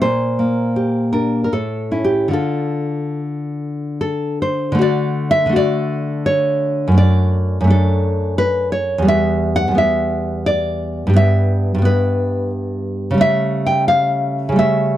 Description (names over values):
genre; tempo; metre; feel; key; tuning
romantic piece for solo classical guitar; 70-90 BPM; 3/4; rubato; D minor, D major from 4.8 s; A4 = 440 Hz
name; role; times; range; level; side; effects
nylon-string guitar; solo; 0.0-15.0 s; E2 to G5; -15 LUFS; equal; none
room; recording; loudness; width
little or no reverb; dry, close 1970s-style studio recording; -15 LUFS; side -13 dB against mid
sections
0.0-4.8 A section; 4.8-15.0 B section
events
none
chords
0.0 Gm/Bb; 1.5 A; 2.3 Dm; 4.8 D; 7.0 D/F#; 9.1 Em; 11.1 Em/G; 13.2 A7/C#